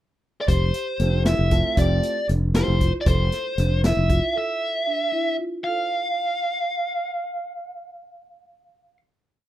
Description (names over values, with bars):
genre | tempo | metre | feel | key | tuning
progressive instrumental, band music in an uneven meter | 233 BPM (eighths) | 5/8 | straight | F major | A4 = 440 Hz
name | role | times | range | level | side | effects
biting lead guitar | melody | 0.4-9.0 s | C5 to F5 | -24 LUFS | right 1 dB | overdrive
marimba with soft mallets | arpeggios | 0.5-9.5 s | D4 to F5 | -31 LUFS | left 3 dB | ping-pong delay
fretless electric bass | bass | 0.5-4.2 s | F1 | -20 LUFS | equal | none
vintage drum kit | drums | 0.5-4.2 s | hi-hat, kick drum, snare drum | -24 LUFS | equal | none
warm grand piano | accompaniment | 1.0-2.7 s | A3 to A4 | -30 LUFS | right 4 dB | none
room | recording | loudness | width
little or no reverb | rough home demo mix | -20 LUFS | side -13 dB against mid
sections
0.0-0.5 pickup bar; 0.5-5.6 groove; 5.6-8.2 final chord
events
none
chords
0.5 Fadd9; 3.1 Am/F; 5.6 F